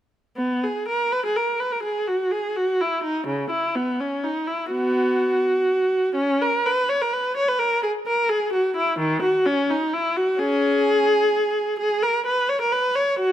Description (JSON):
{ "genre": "classical, baroque-style suite movement for unaccompanied viola", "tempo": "85 BPM (dotted quarters)", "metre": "12/8", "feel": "rubato", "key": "B major", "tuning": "A4 = 445 Hz", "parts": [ { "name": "rich viola", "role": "solo", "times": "0.4-13.3 s", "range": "C#3 to C#5", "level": "-20 LUFS", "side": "equal", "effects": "none" } ], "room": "light reverb", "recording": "close, detailed microphones", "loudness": "-20 LUFS", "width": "side -11 dB against mid", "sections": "0.4-13.3 A section", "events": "none", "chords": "none", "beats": "| 0.37 1.12 1.84 2.56 | 3.28 4.00 4.71 5.42 | 6.15 6.88 7.59 8.29 | 9.00 9.70 10.39 11.10 | 11.79 12.48 13.19" }